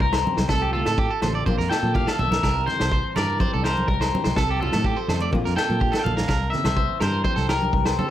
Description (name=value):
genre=highlife guitar band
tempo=124 BPM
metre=4/4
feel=straight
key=C mixolydian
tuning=A4 = 440 Hz
part: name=electric guitar at the edge of break-up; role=melody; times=0.0-8.1 s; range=A4 to G5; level=-26 LUFS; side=left 4 dB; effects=lush chorus
part: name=flamenco guitar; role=accompaniment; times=0.0-8.1 s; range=G2 to G4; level=-31 LUFS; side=left 5 dB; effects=none
part: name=fingered electric bass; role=bass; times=0.0-8.0 s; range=A1 to Bb2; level=-26 LUFS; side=equal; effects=none
part: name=vintage drum kit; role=drums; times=0.0-8.0 s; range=kick drum, snare drum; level=-26 LUFS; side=equal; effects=none
part: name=electric guitar at the edge of break-up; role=arpeggios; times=0.1-8.1 s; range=F4 to D5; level=-28 LUFS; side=right 6 dB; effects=slapback echo
part: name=agogo bells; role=percussion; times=0.1-8.0 s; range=none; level=-35 LUFS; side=equal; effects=none
part: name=congas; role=percussion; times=0.3-8.1 s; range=none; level=-30 LUFS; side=right 1 dB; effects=none
room=light reverb, studio reverb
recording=none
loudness=-20 LUFS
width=side -12 dB against mid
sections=0.0-8.1 A section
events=none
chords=0.0 C; 0.5 F/C; 1.5 Bbadd9; 2.4 C; 4.4 F/C; 5.3 Bbadd9; 6.3 C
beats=0.02 | 0.50 0.98 1.47 1.95 | 2.44 2.92 3.40 3.89 | 4.37 4.85 5.34 5.82 | 6.30 6.78 7.26 7.75